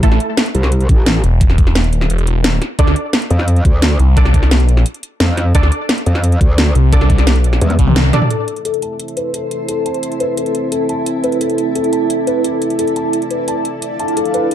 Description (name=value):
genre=dark technical drum and bass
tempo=174 BPM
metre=4/4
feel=straight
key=A minor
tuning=A4 = 440 Hz
part: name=orchestra-hit-like synth stab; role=stabs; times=0.0-0.2, 2.8-8.2 s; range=A3 to D5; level=-21 LUFS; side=right 2 dB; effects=built-in reverb, ping-pong delay
part: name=phased detuned saw bass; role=bass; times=0.0-8.1 s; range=E1 to D2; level=-12 LUFS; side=equal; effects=phaser, sidechain pumping
part: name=drum and bass drum kit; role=drums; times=0.0-14.5 s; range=hi-hat, snare drum, toms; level=-18 LUFS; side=equal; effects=none
part: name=electronic kick drum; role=drums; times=0.0-7.9 s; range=none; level=-12 LUFS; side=equal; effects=none
part: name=metallic wobble bass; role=bass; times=0.5-1.2, 3.3-7.8 s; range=A1 to F2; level=-13 LUFS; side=equal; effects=chorus
part: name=dark analog pad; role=sustained chords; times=8.6-14.5 s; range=C4 to F5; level=-21 LUFS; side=right 2 dB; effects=chorus, sidechain pumping
part: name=felt-muted upright piano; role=arpeggios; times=8.3-14.5 s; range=A4 to A5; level=-20 LUFS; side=left 4 dB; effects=sidechain pumping, low-pass filter, ping-pong delay
part: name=granular cloud pad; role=texture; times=9.0-14.5 s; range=E4 to A5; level=-20 LUFS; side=right 3 dB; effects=built-in reverb, sidechain pumping
room=light reverb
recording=dark, warm production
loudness=-12 LUFS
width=side -11 dB against mid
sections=0.0-8.3 A section; 8.3-14.5 B section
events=filter sweep on synth stab 0.0-8.3; drum fill 7.6-8.3; band accent 8.0; filter sweep on felt piano 8.3-14.5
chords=0.0 A5; 2.8 Dm; 8.3 Am; 13.8 Dm